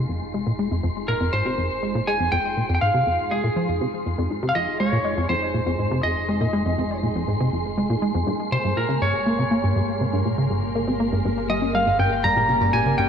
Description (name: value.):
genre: ambient, sequencer-driven space music.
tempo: 121 BPM.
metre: 4/4.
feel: straight.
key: F minor.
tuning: A4 = 440 Hz.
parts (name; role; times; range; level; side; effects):
string machine, full ensemble; sustained chords; 0.0-13.1 s; Bb3 to Bb4; -32 LUFS; left 1 dB; ensemble chorus.
plucky analog bass; riff; 0.0-13.1 s; F2 to Db4; -23 LUFS; equal; wide subtle chorus, cassette tape, ping-pong delay.
fat analog bass; bass; 0.0-13.1 s; F1 to G1; -34 LUFS; equal; none.
wind-like tuned noise texture; texture; 0.0-13.1 s; Ab3 to C6; -31 LUFS; right 2 dB; built-in reverb.
lightly driven lead guitar; melody; 1.1-13.1 s; Ab4 to Bb5; -24 LUFS; equal; ping-pong delay.
concert harp; arpeggios; 12.2-13.1 s; G3 to G4; -28 LUFS; left 2 dB; auto-pan, ping-pong delay.
room: wet concert hall reverb, RT60 2.4 s.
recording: none.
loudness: -20 LUFS.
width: side -7 dB against mid.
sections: 0.0-13.1 A section.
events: fade-in on string machine 0.0-13.1; fade-in on analog synth bass 0.0-13.1.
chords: 0.0 Fm; 8.3 Gdim.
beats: | 0.34 0.83 1.33 1.83 | 2.32 2.82 3.31 3.81 | 4.30 4.80 5.30 5.79 | 6.29 6.78 7.28 7.78 | 8.27 8.77 9.26 9.76 | 10.26 10.75 11.25 11.74 | 12.24 12.73.